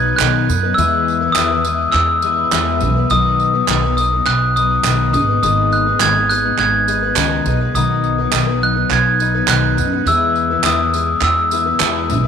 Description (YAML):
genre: indie folk with a building arrangement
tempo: 103 BPM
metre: 4/4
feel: straight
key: B major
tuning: A4 = 440 Hz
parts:
  - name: glockenspiel with soft plastic mallets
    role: melody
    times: 0.0-12.1 s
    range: D#6 to G#6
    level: -16 LUFS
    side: equal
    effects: tape echo
  - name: fingerpicked acoustic archtop guitar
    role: accompaniment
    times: 0.0-0.8 s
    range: none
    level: barely audible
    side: none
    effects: none
  - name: picked twelve-string acoustic guitar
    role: accompaniment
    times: 0.0-12.3 s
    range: G#2 to B4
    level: -21 LUFS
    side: left 11 dB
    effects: none
  - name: upright bass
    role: bass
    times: 0.0-12.3 s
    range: G#1 to F#2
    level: -19 LUFS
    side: right 2 dB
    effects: none
  - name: group handclap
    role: percussion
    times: 0.2-11.9 s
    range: none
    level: -21 LUFS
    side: right 14 dB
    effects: none
  - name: tambourine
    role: percussion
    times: 0.2-12.2 s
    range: none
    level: -30 LUFS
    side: right 18 dB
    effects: none
room: moderate echo chamber reverb, RT60 1.6 s, studio reverb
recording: 1960s-style stereo with parts hard left and right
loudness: -13 LUFS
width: side -7 dB against mid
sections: 0.0-12.3 A section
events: none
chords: 0.0 B; 0.8 E; 3.1 B; 5.1 G#m; 7.7 B; 10.1 E